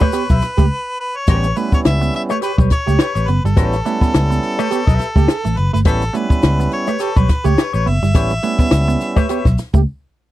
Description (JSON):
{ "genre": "funk", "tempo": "105 BPM", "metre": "4/4", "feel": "swing 56% on 16ths", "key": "unclear", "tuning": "A4 = 443 Hz", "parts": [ { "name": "warm harmonica", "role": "melody", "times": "0.0-9.6 s", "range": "A4 to E5", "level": "-23 LUFS", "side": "equal", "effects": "none" }, { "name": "electric guitar with an envelope filter", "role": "accompaniment", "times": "0.0-9.5 s", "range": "G4 to E5", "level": "-23 LUFS", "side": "left 8 dB", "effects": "none" }, { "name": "clean electric guitar", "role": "riff", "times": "0.0-9.8 s", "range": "G3 to B3", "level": "-22 LUFS", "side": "right 8 dB", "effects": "none" }, { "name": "percussive tonewheel organ", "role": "stabs", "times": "0.0-9.2 s", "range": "G3 to G4", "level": "-22 LUFS", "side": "right 2 dB", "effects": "overdrive" }, { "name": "compact cocktail drum kit", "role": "drums", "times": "0.0-9.9 s", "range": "hi-hat, kick drum, snare drum", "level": "-15 LUFS", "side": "equal", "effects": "none" }, { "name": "warm trombone", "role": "second line", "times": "0.1-9.8 s", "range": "G4", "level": "-22 LUFS", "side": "right 13 dB", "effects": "none" }, { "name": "tube shaker", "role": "percussion", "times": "0.1-9.9 s", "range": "none", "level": "-42 LUFS", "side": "left 5 dB", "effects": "none" }, { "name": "vintage muted fingered electric bass", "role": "bass", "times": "0.3-9.8 s", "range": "F#1 to C#2", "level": "-16 LUFS", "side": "equal", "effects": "none" } ], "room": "little or no reverb", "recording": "dry, close 1970s-style studio recording", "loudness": "-14 LUFS", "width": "side -15 dB against mid", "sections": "0.0-10.3 A section", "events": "break 0.7-1.3, 9.9-10.3", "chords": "0.0 A9" }